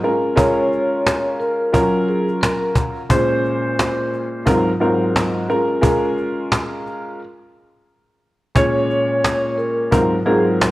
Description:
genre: hip hop, boom-bap hip-hop.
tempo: 88 BPM.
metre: 4/4.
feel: swing 58% on 16ths.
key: unclear.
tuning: A4 = 440 Hz.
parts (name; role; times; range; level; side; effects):
dark baby grand piano; accompaniment; 0.0-10.7 s; Ab2 to Db5; -18 LUFS; equal; cassette tape, high-pass filter, low-pass filter.
cajon; drums; 0.0-10.7 s; none; -19 LUFS; equal; none.
vibraphone with soft mallets; melody; 0.4-2.7, 8.6-10.4 s; Ab4 to Db5; -21 LUFS; equal; high-pass filter, low-pass filter.
room: light reverb.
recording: worn, warbling old tape, cassette tape, warbly pitch drift.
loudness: -16 LUFS.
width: side -17 dB against mid.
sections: 0.0-10.7 A section.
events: break 7.2-8.6.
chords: 0.0 Db6/Ab; 1.7 Gbmaj7; 3.1 Bbm9; 4.5 Ab13; 5.5 Db6/Ab; 7.2 N.C.; 8.6 Bbm7; 9.9 Ab13.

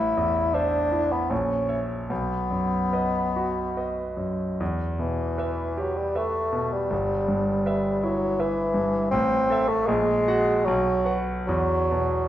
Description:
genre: classical, romantic duo for bassoon and grand piano.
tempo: 70-84 BPM.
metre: 3/4.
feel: rubato.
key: E minor.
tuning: A4 = 441 Hz.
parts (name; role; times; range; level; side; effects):
mellow bassoon; melody; 0.0-12.3 s; E3 to E4; -24 LUFS; left 1 dB; none.
clear concert grand piano; accompaniment; 0.0-12.3 s; G1 to F#5; -26 LUFS; right 1 dB; none.
room: wet recital hall reverb, RT60 1.4 s.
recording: none.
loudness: -22 LUFS.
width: side -12 dB against mid.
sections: 0.0-12.3 A section.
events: none.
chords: 0.0 Am; 1.3 A#dim; 2.1 B; 4.6 Em; 6.9 Em/G; 9.1 Am; 9.9 F#/A#; 10.7 B5; 11.5 E5.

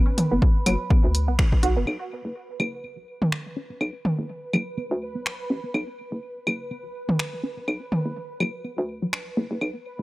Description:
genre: minimal techno.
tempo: 124 BPM.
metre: 4/4.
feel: swing 56% on 16ths.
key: B minor.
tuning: A4 = 439 Hz.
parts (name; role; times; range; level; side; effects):
hollow knocking FM bass; bass; 0.0-10.0 s; F#1 to D2; -26 LUFS; equal; sidechain pumping, high-pass filter.
bubbling stepped-filter texture; texture; 0.0-10.0 s; B4; -37 LUFS; right 2 dB; chorus, built-in reverb, sidechain pumping.
punchy analog drum machine; drums; 0.2-9.2 s; finger snaps, hi-hat; -30 LUFS; equal; none.
electronic toms and claves; percussion; 0.2-9.7 s; none; -26 LUFS; equal; none.
resonant blip pluck; riff; 0.3-10.0 s; F#3 to F#4; -28 LUFS; right 1 dB; phaser, sidechain pumping, tape echo.
electronic kick drum; drums; 0.4-1.6 s; none; -19 LUFS; equal; none.
room: digital ambience.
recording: dry, gritty hardware recording.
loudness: -23 LUFS.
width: side -20 dB against mid.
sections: 0.0-1.9 A section; 1.9-10.0 B section.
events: band accent 1.4.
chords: 0.0 Bm; 1.9 B5.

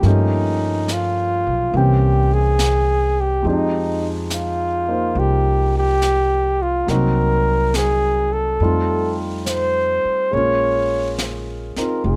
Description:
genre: jazz ballad.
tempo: 70 BPM.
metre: 4/4.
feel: swing 68% on 8ths.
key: unclear.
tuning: A4 = 440 Hz.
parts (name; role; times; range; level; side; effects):
breathy flugelhorn; melody; 0.0-12.2 s; Eb4 to Db5; -22 LUFS; equal; none.
warm concert grand piano; accompaniment; 0.0-12.2 s; E3 to G5; -27 LUFS; equal; none.
upright bass; bass; 0.0-12.2 s; F1 to G2; -23 LUFS; equal; none.
jazz brush drum kit; drums; 0.0-12.2 s; brushed snare drum, hi-hat, snare drum; -32 LUFS; equal; none.
room: little or no reverb.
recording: close, detailed microphones.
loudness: -19 LUFS.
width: mono.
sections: 0.0-12.2 A section.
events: none.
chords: 0.0 Gm7b5; 1.7 C7b9; 3.4 Fm9; 6.9 Cm7b5; 8.6 F7; 10.3 Bbm9.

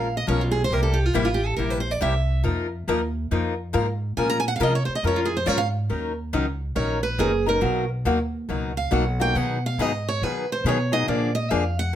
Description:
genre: acoustic string swing (jazz manouche).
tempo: 139 BPM.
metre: 4/4.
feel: swing 64% on 8ths.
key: Bb minor, Eb minor from 5.9 s.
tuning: A4 = 440 Hz.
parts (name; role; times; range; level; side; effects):
picked steel-string acoustic guitar; melody; 0.0-11.9 s; E4 to Bb5; -25 LUFS; right 3 dB; plate reverb.
picked steel-string acoustic guitar; accompaniment; 0.0-12.0 s; B2 to Bb4; -25 LUFS; left 4 dB; none.
upright bass; bass; 0.0-11.9 s; Gb1 to Eb3; -25 LUFS; equal; none.
room: moderate studio reverb, RT60 0.6 s.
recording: none.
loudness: -21 LUFS.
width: side -11 dB against mid.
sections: 0.0-5.9 A section; 5.9-12.0 A section.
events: steel-string acoustic guitar solo 0.0-12.0.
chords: 0.0 Bbm7; 0.7 C7; 2.4 F7sus4; 4.2 Bbm9; 5.9 Ebm7; 7.6 Bmaj7; 9.4 Abm7; 11.1 Bb7.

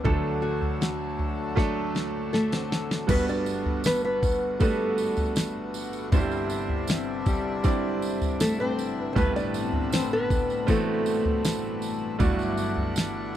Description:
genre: pop ballad.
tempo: 79 BPM.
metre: 4/4.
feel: straight.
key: G major.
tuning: A4 = 440 Hz.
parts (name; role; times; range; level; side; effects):
nylon-string guitar; melody; 0.0-12.9 s; F#3 to D5; -29 LUFS; left 1 dB; slapback echo.
clear concert grand piano; accompaniment; 0.0-13.4 s; G1 to D5; -30 LUFS; right 4 dB; none.
hand-pumped harmonium; sustained chords; 0.0-13.4 s; D2 to F#5; -34 LUFS; left 2 dB; none.
picked steel-string acoustic guitar; arpeggios; 0.0-13.4 s; G2 to A4; -35 LUFS; left 13 dB; none.
smooth R&B drum kit; drums; 0.1-13.1 s; crash cymbal, kick drum, snare drum, toms; -25 LUFS; equal; none.
tambourine; percussion; 3.1-13.1 s; none; -41 LUFS; right 11 dB; none.
room: little or no reverb.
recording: dry, close 1970s-style studio recording.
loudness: -24 LUFS.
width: side -11 dB against mid.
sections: 0.0-3.1 A section; 3.1-13.4 B section.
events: drum fill 1.6-3.1.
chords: 0.1 D; 3.1 Gmaj7; 6.1 Cadd9/G; 9.2 Amadd9/G; 12.2 Dadd9/G.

